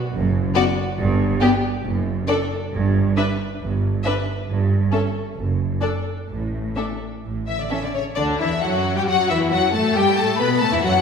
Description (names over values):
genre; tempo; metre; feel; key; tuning
quick classical-period movement for string orchestra; 124-141 BPM; 4/4; rubato; D major; A4 = 440 Hz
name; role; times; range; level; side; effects
rich studio double bass section; bass; 0.1-10.9 s; F#1 to B2; -25 LUFS; right 3 dB; none
warm studio cello section; bass; 0.1-11.0 s; F#2 to B3; -25 LUFS; right 3 dB; none
warm studio violin section; second line; 0.5-10.9 s; D4 to B4; -25 LUFS; left 4 dB; none
rich studio violin section; melody; 0.6-11.0 s; C#5 to B5; -24 LUFS; left 6 dB; none
warm studio viola section; accompaniment; 0.6-11.0 s; D3 to D4; -24 LUFS; left 1 dB; none
room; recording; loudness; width
wet scoring stage reverb, RT60 1.6 s; heard from further back in the room; -18 LUFS; side -6 dB against mid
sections
0.0-8.2 A section; 8.2-11.0 B section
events
none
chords
0.0 N.C.; 7.2 A; 8.2 D; 10.0 A5/G